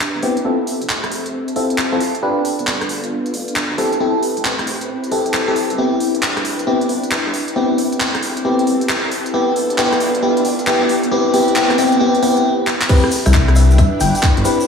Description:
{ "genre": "UK garage, two-step garage", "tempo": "135 BPM", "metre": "4/4", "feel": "swing 64% on 16ths", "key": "C major", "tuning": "A4 = 439 Hz", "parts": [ { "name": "soft string machine", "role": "sustained chords", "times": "0.0-14.7 s", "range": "B3 to E5", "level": "-24 LUFS", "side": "left 1 dB", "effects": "ensemble chorus, sidechain pumping" }, { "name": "garage drum kit", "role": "drums", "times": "0.0-14.6 s", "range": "crash cymbal, handclaps, hi-hat, rim click", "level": "-21 LUFS", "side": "equal", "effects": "none" }, { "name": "dark detuned saw bass", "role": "bass", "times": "0.1-14.4 s", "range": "F1 to D2", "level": "-18 LUFS", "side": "left 1 dB", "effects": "sidechain pumping, high-pass filter" }, { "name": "FM electric piano", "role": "stabs", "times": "0.2-14.6 s", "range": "B3 to B4", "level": "-17 LUFS", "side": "left 1 dB", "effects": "chorus, phaser, low-pass filter, analog delay" }, { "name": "electronic kick drum", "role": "drums", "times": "12.9-14.3 s", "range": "none", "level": "-16 LUFS", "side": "equal", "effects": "none" }, { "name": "egg shaker", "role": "percussion", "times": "12.9-14.7 s", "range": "none", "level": "-28 LUFS", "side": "left 3 dB", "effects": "none" }, { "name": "thumb-piano-like synth pluck", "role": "melody", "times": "13.3-14.2 s", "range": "E5 to G5", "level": "-22 LUFS", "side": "right 1 dB", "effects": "chorus, phaser, cassette tape, analog delay" } ], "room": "wet lush hall reverb, RT60 1.8 s, digital ambience", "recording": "dreamy mix soaked in reverb", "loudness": "-14 LUFS", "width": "side -6 dB against mid", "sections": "0.0-12.9 A section; 12.9-14.7 B section", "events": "build-up 0.0-12.9; filter sweep on FM electric piano 0.0-12.9; filter sweep on string machine 0.0-12.9; stop 12.4-12.9; drum fill 12.7; drop 12.9-14.7", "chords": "0.4 Fmaj7; 2.2 G7; 3.8 Am7; 5.8 Cmaj7; 7.6 Fmaj7; 9.3 G7; 10.9 Am7; 12.9 Cmaj7" }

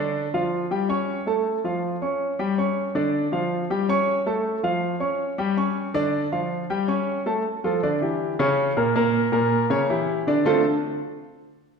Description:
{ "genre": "latin", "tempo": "160 BPM", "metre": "4/4", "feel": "straight", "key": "D harmonic minor", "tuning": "A4 = 440 Hz", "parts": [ { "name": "warm grand piano", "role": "solo", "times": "0.0-10.6 s", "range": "A#2 to C#6", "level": "-21 LUFS", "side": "equal", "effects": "none" } ], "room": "wet recital hall reverb, RT60 1.5 s", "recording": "recorded in a church or concert hall", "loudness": "-21 LUFS", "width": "side -5 dB against mid", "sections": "0.0-7.5 A section; 7.5-10.5 B section; 10.5-11.8 C section", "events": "none", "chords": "0.0 Dm; 0.7 A7; 1.4 Faug; 2.2 N.C.; 3.0 Dm; 3.7 A7; 4.5 Faug; 5.2 N.C.; 6.0 Dm; 6.7 A7; 7.5 Dm; 8.2 A#dim7; 9.0 N.C.; 9.7 C#dim; 10.5 Dm7" }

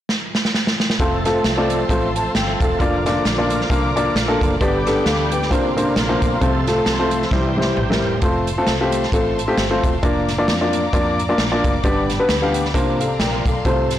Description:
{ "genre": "uptempo gospel", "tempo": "133 BPM", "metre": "4/4", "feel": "swing 57% on 8ths", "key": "F major", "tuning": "A4 = 441 Hz", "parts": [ { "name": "swinging big-band drum kit", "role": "drums", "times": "0.1-14.0 s", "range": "hi-hat, kick drum, snare drum, toms", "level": "-21 LUFS", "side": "right 1 dB", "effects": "none" }, { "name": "warm upright piano", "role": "accompaniment", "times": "1.0-14.0 s", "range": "G2 to A5", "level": "-19 LUFS", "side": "left 1 dB", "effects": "none" }, { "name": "overdriven tonewheel organ", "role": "sustained chords", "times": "1.0-8.2 s", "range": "D3 to A4", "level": "-25 LUFS", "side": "right 2 dB", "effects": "slow rotary speaker, chorus vibrato" }, { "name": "rich studio string section", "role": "sustained chords", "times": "1.0-14.0 s", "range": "C5 to D6", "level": "-28 LUFS", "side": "left 2 dB", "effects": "none" }, { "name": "fingered electric bass", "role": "bass", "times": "1.0-14.0 s", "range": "E1 to F2", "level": "-26 LUFS", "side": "equal", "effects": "transformer saturation" } ], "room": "light reverb", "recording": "blown-out, overdriven recording, overdrive", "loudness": "-16 LUFS", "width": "side -12 dB against mid", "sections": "1.0-8.2 A section; 8.2-14.0 B section", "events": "drum fill 0.1-1.0, 7.3-8.2", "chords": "0.0 N.C.; 1.0 F; 2.8 Bb/F; 4.6 G; 5.5 C9sus4; 6.4 F/C; 7.3 C; 8.2 F; 10.0 Bb/F; 11.8 G; 12.7 C9sus4" }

